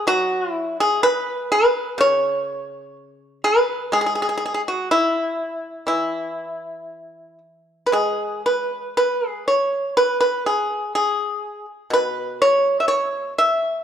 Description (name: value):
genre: chinese traditional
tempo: 62 BPM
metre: 4/4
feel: rubato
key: E gong mode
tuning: A4 = 440 Hz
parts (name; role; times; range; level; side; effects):
- pipa; solo; 0.0-13.8 s; B2 to E5; -18 LUFS; equal; none
room: moderate recital hall reverb, RT60 1.6 s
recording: dark, warm production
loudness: -18 LUFS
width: side -9 dB against mid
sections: 0.0-7.9 A section; 7.9-13.8 B section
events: none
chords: none